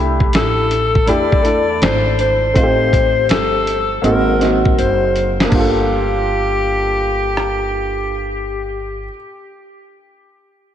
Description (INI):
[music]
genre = hip hop, jazz-hop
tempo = 81 BPM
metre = 4/4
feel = swing 65% on 16ths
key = G minor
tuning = A4 = 443 Hz
[part]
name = warm upright piano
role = accompaniment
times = 0.0-9.1 s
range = A3 to A4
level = -19 LUFS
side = right 1 dB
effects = none
[part]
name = upright bass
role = bass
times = 0.0-9.1 s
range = Gb1 to E2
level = -22 LUFS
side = equal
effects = none
[part]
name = dusty soul sampler-style drum kit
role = drums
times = 0.2-7.6 s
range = crash cymbal, hi-hat, kick drum, rim click, snare drum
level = -18 LUFS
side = equal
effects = none
[part]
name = breathy alto saxophone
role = melody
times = 0.4-9.1 s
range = G4 to D5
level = -18 LUFS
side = left 3 dB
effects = ping-pong delay
[sound]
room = moderate lush hall reverb, RT60 2.7 s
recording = dreamy mix soaked in reverb, cassette tape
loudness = -13 LUFS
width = side -10 dB against mid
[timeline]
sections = 0.0-5.5 A section; 5.5-8.5 B section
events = drum fill 4.8-5.5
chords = 0.0 C6; 2.6 Am7b5; 4.0 Ab9; 5.5 Gm9